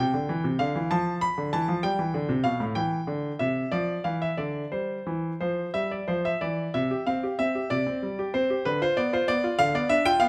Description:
classical-period piano sonatina; 58-65 BPM (dotted quarters); 6/8; rubato; C major; A4 = 440 Hz
bright concert grand piano; solo; 0.0-10.3 s; A2 to B5; -27 LUFS; equal
light reverb; close, detailed microphones; -27 LUFS; mono
0.0-6.8 A section; 6.8-10.3 B section
0.0 C; 0.9 Dm69; 1.8 G; 2.8 C; 3.7 Dm; 4.7 Em7; 6.8 C5; 8.7 Bdim/D

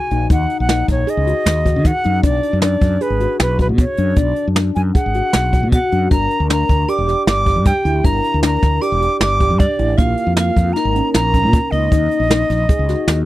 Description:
progressive instrumental, band music in an uneven meter; 155 BPM; 5/4; straight; A4 = 440 Hz
silver concert flute; melody; 0.0-13.2 s; B4 to D6; -19 LUFS; right 1 dB
handpan; arpeggios; 0.0-13.2 s; Bb3 to Ab4; -22 LUFS; left 2 dB
mellow fretless electric bass; bass; 0.1-13.3 s; Fb1 to Eb3; -18 LUFS; equal
jazz brush drum kit; drums; 0.1-13.2 s; hi-hat, kick drum, snare drum; -16 LUFS; equal
vibraphone with hard mallets; second line; 5.7-13.3 s; D4 to D5; -24 LUFS; left 2 dB
little or no reverb; dry, close 1970s-style studio recording; -13 LUFS; side -15 dB against mid
0.0-13.3 A section
0.0 Ebm; 2.2 Bm; 6.1 Gm; 10.0 Bbm; 11.9 Ebm

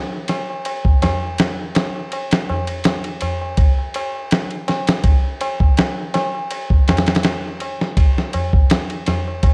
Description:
trip hop; 82 BPM; 4/4; swing 54% on 16ths
tabla; percussion; 0.1-9.5 s; -27 LUFS; equal
dusty soul sampler-style drum kit; drums; 0.3-9.5 s; kick drum, ride cymbal, snare drum; -19 LUFS; equal
little or no reverb; -19 LUFS; mono
0.0-9.5 A section

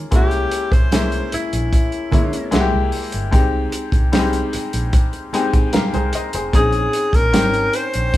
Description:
lush 1970s-style soul; 75 BPM; 4/4; straight; F minor; A4 = 440 Hz
bright grand piano; accompaniment; 0.0-8.2 s; G3 to Ab5; -22 LUFS; left 2 dB
vintage muted fingered electric bass; bass; 0.0-8.1 s; F1 to C2; -23 LUFS; equal
warm soul drum kit; drums; 0.1-8.2 s; hi-hat, kick drum, snare drum; -17 LUFS; equal
congas; percussion; 0.1-8.2 s; -28 LUFS; right 4 dB
breathy alto saxophone; melody; 0.2-8.2 s; E4 to C5; -20 LUFS; left 1 dB
moderate large studio reverb, RT60 0.9 s; band playing live in one room; -15 LUFS; side -15 dB against mid
0.0-8.2 A section
alto saxophone solo 0.0-8.2; grand piano fill 4.9-6.5
0.1 C7b9b13; 2.5 C7b13; 3.3 Fm9; 6.5 Bbm11

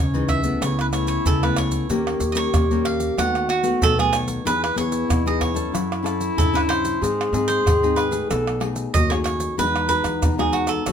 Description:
samba and choro; 94 BPM; 4/4; straight; A4 = 437 Hz
cavaquinho; melody; 0.0-10.9 s; F#4 to F#5; -24 LUFS; right 4 dB
dark clarinet; second line; 0.0-10.9 s; C#4 to A4; -25 LUFS; left 2 dB
nylon-string guitar; accompaniment; 0.0-10.9 s; F#2 to A4; -26 LUFS; left 5 dB
upright bass; bass; 0.0-10.9 s; A1 to E3; -27 LUFS; equal
maracas, pandeiro, surdo and tamborim; percussion; 0.1-10.9 s; -24 LUFS; right 1 dB
moderate studio reverb, RT60 0.6 s; minimal, uncompressed stereo recording; -18 LUFS; side -8 dB against mid
0.0-9.6 A section; 9.6-10.9 B section
0.0 C#madd9; 0.6 Aadd9/C#; 1.9 D#7; 3.2 B7/D#; 4.5 Emaj7; 5.7 F#m7; 7.0 G#; 8.3 B6; 9.6 Emaj9

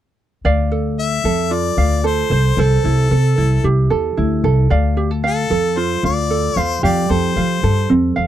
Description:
pop; 113 BPM; 4/4; straight; D minor; A4 = 440 Hz
ukulele; accompaniment; 0.4-8.3 s; C4 to F5; -19 LUFS; right 5 dB
upright bass; bass; 0.4-8.3 s; C2 to F3; -16 LUFS; equal
bright harmonica; melody; 1.0-7.9 s; A4 to E5; -21 LUFS; left 7 dB
little or no reverb; dry, close 1970s-style studio recording; -14 LUFS; side -11 dB against mid
0.4-8.3 A section
0.4 Dm; 2.3 Am7/C; 4.7 Dm; 6.8 Fadd9

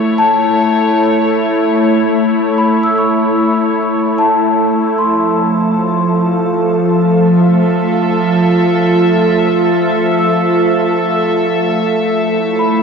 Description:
ambient; 75 BPM; 4/4; straight; A major; A4 = 441 Hz
evolving wavetable pad; sustained chords; 0.0-12.8 s; F3 to E5; -12 LUFS; equal; chorus, built-in reverb
large celesta; arpeggios; 0.0-12.8 s; A5 to E6; -18 LUFS; left 2 dB; ping-pong delay
organ-like drone; drone; 0.0-12.8 s; A3 to A4; -18 LUFS; right 2 dB; ensemble chorus, built-in reverb
wet huge ambient reverb, RT60 8.6 s; dark, warm production; -11 LUFS; side -5 dB against mid
0.0-12.8 A section
0.0 A; 5.0 Fmaj7; 11.4 A

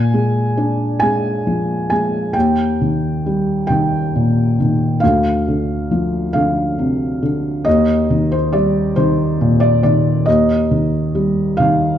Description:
classical, lyrical solo piano; 45 BPM (dotted quarters); 6/8; rubato; Eb major; A4 = 440 Hz
felt-muted upright piano; solo; 0.0-12.0 s; D2 to Ab5; -14 LUFS; equal
moderate recital hall reverb, RT60 1.3 s; dark, warm production; -14 LUFS; side -10 dB against mid
0.0-12.0 A section
felt piano fill 11.6-12.0
0.0 Bb7; 2.4 Eb; 5.0 Dm7; 7.7 Eb

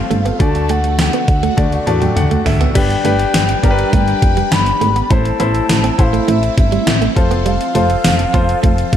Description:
1980s-style pop; 102 BPM; 4/4; straight; G mixolydian; A4 = 440 Hz
mellow alto ocarina; melody; 0.0-9.0 s; E5 to B5; -20 LUFS; left 2 dB
clear baby grand piano; accompaniment; 0.0-9.0 s; A3 to A5; -20 LUFS; left 3 dB; tube saturation
phased string machine; sustained chords; 0.0-9.0 s; D3 to B4; -24 LUFS; right 1 dB; ensemble chorus, phaser
solid FM bass; bass; 0.0-9.0 s; F1 to E2; -18 LUFS; equal
direct-recorded clean electric guitar; riff; 0.1-9.0 s; F#3 to D4; -23 LUFS; right 10 dB; analog chorus
gated 80s digital drum machine; drums; 0.1-9.0 s; crash cymbal, hi-hat, kick drum, snare drum, tambourine, toms; -16 LUFS; equal; gated reverb, gated reverb snare, overdrive
light reverb, digital ambience; -12 LUFS; side -10 dB against mid
0.0-2.8 A section; 2.8-9.0 B section
drum fill 1.6-2.8; grand piano fill 1.6-2.8
0.4 D; 2.8 G; 5.1 Am; 7.2 F

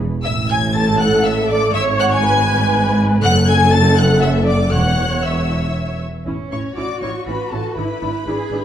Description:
quick classical-period movement for string orchestra; 120 BPM; 3/4; straight; A major; A4 = 439 Hz
rich studio violin section; melody; 0.2-8.6 s; A5 to A6; -24 LUFS; left 4 dB
warm symphonic violin section; second line; 0.2-8.6 s; A4 to A5; -21 LUFS; left 2 dB
rich studio cello section; bass; 0.2-8.6 s; E2 to G#4; -20 LUFS; right 1 dB
warm studio double bass section; bass; 0.2-8.6 s; E1 to A1; -20 LUFS; right 1 dB
rich studio viola section; accompaniment; 0.7-8.6 s; C#4 to C#5; -21 LUFS; right 1 dB
moderate scoring stage reverb, RT60 2.0 s; dark, warm production; -14 LUFS; side -10 dB against mid
0.0-6.3 A section; 6.3-8.6 B section
0.2 Asus4; 1.7 G#madd11; 3.2 F#madd9; 4.7 C#m/E; 6.3 A; 7.8 E7/G#

